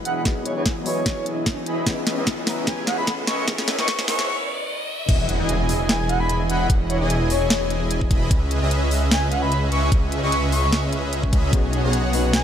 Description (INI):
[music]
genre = future bass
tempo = 149 BPM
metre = 4/4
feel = swing 54% on 16ths, half-time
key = E major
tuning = A4 = 441 Hz
[part]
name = felt-muted upright piano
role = accompaniment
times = 0.0-5.1, 11.5-12.4 s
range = E3 to A#5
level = -30 LUFS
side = left 6 dB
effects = sidechain pumping, dub echo
[part]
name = soft supersaw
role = riff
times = 0.0-12.4 s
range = E3 to B5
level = -26 LUFS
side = right 1 dB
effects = sidechain pumping, low-pass filter
[part]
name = wide detuned saw bass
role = bass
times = 0.0-12.4 s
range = E1 to C#2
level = -24 LUFS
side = equal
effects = chorus, sidechain pumping, high-pass filter
[part]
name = riser and impact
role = sound effects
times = 0.6-6.7 s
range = none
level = -31 LUFS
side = equal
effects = none
[part]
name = breathy flute-like synth lead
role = melody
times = 0.1-12.4 s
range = C#5 to C#6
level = -27 LUFS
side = equal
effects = tremolo, wide subtle chorus, sidechain pumping, dub echo
[part]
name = trap drum kit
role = drums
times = 0.1-12.4 s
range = crash cymbal, hi-hat, snare drum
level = -24 LUFS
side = equal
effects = none
[part]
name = electronic kick drum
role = drums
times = 0.3-11.6 s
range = none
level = -21 LUFS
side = equal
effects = none
[sound]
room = light reverb, digital ambience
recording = high-pass filter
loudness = -19 LUFS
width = side -9 dB against mid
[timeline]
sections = 0.0-5.1 A section; 5.1-12.4 B section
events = build-up 0.0-5.1; drum fill 0.0-4.3; filter sweep on supersaw synth 0.0-5.1; filter sweep 0.0-5.1; riser 0.6-5.1; break 4.3-5.1; drop 5.1-12.4; impact 5.1-6.7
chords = 0.0 Emaj7; 1.9 C#m7; 5.1 Emaj7; 8.3 C#m7; 11.5 B6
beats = | 0.25 0.66 1.06 1.46 | 1.86 2.27 2.67 3.07 | 3.48 3.88 4.28 4.68 | 5.09 5.49 5.89 6.29 | 6.70 7.10 7.50 7.91 | 8.31 8.71 9.11 9.52 | 9.92 10.32 10.72 11.13 | 11.53 11.93 12.34